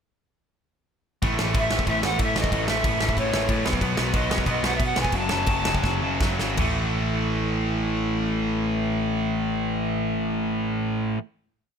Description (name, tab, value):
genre	punk rock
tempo	155-186 BPM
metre	4/4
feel	straight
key	A major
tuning	A4 = 440 Hz
part	biting overdriven guitar	riff	1.2-11.2 s	F#2 to B3	-29 LUFS	left 10 dB	none
part	distorted electric guitar	riff	1.2-11.2 s	F#2 to B3	-30 LUFS	right 17 dB	overdrive
part	scooped high-gain guitar	riff	1.2-11.2 s	F#2 to B3	-29 LUFS	right 1 dB	distortion
part	growling picked electric bass	bass	1.2-11.1 s	F#1 to B2	-30 LUFS	equal	overdrive
part	big rock drum kit	drums	1.2-6.7 s	crash cymbal, kick drum, snare drum, toms	-26 LUFS	equal	none
part	bright reedy pan flute	melody	1.6-6.2 s	C#5 to A5	-27 LUFS	equal	none
room	little or no reverb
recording	none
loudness	-22 LUFS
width	side -7 dB against mid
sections	1.2-6.6 riff; 6.6-9.7 final chord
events	slowing down 3.8-6.6; drum fill 5.8-6.6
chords	1.2 A5; 3.6 B; 5.1 F#m; 6.6 A5